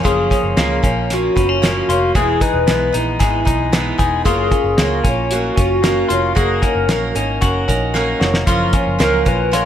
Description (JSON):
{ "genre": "jangly indie pop", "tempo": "114 BPM", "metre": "4/4", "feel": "straight", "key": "F# major", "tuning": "A4 = 440 Hz", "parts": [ { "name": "warbly nostalgic lead", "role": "melody", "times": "0.0-9.7 s", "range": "F#4 to C#5", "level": "-19 LUFS", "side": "left 1 dB", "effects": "chorus, plate reverb" }, { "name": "picked twelve-string acoustic guitar", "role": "accompaniment", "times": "0.0-9.7 s", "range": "F#2 to A#4", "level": "-21 LUFS", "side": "right 4 dB", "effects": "none" }, { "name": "clean electric guitar", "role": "arpeggios", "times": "0.0-9.7 s", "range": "E3 to G#4", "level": "-20 LUFS", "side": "left 4 dB", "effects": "none" }, { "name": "vintage muted picked electric bass", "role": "bass", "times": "0.1-9.7 s", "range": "E1 to C#2", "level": "-22 LUFS", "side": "equal", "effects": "none" }, { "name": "cloth-damped thuddy drum kit", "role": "drums", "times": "0.1-9.7 s", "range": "hi-hat, kick drum, snare drum", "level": "-18 LUFS", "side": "equal", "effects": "none" } ], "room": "light reverb", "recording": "none", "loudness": "-14 LUFS", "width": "side -10 dB against mid", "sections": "0.1-9.7 A section", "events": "drum fill 8.0-8.5", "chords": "0.1 F#maj7; 2.2 Emaj7; 4.3 F#maj7; 6.4 D#m7/F#; 8.5 F#maj7", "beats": "| 0.05 0.57 1.10 1.63 | 2.15 2.68 3.21 3.73 | 4.26 4.79 5.31 5.84 | 6.37 6.89 7.42 7.95 | 8.48 9.01 9.53" }